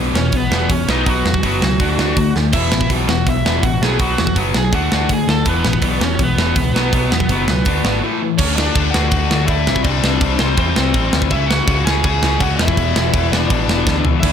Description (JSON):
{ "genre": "punk rock", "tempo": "164 BPM", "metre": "4/4", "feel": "straight", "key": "E mixolydian from 8.4 s", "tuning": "A4 = 443 Hz", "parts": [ { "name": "distorted electric guitar", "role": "riff", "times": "0.0-14.3 s", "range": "E2 to D4", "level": "-20 LUFS", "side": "left 11 dB", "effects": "distortion" }, { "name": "tight distorted guitar", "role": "riff", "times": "0.0-8.4, 14.2-14.3 s", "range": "E2 to D4", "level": "-23 LUFS", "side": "right 17 dB", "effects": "distortion" }, { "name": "overdriven picked electric bass", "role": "bass", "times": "0.0-14.3 s", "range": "E1 to E2", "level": "-20 LUFS", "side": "right 1 dB", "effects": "none" }, { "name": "biting lead guitar", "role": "melody", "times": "0.1-14.3 s", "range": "B3 to A5", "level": "-22 LUFS", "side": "right 2 dB", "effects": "overdrive, digital delay" }, { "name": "tight metal drum kit", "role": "drums", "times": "0.2-14.3 s", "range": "crash cymbal, hi-hat, kick drum, snare drum, splash cymbal, toms", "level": "-18 LUFS", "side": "right 1 dB", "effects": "none" } ], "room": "little or no reverb", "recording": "none", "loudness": "-14 LUFS", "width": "side -8 dB against mid", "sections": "0.0-8.4 A section; 8.4-14.3 B section", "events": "drum fill 2.4, 13.9-14.2", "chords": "0.0 E5; 0.9 B; 1.8 D; 2.5 E5; 3.8 B5; 4.7 D; 5.5 E5; 6.7 B5; 7.7 D5; 8.0 A5; 8.4 D; 9.7 C; 11.3 C#m; 12.6 E5", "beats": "0.34 0.71 | 1.07 1.44 1.81 2.17 | 2.54 2.90 3.27 3.64 | 4.00 4.37 4.74 5.10 | 5.47 5.83 6.20 6.57 | 6.93 7.30 7.66 8.03 | 8.40 8.76 9.13 9.49 | 9.86 10.22 10.59 10.95 | 11.32 11.69 12.05 12.41 | 12.78 13.14 13.51 13.88 | 14.24" }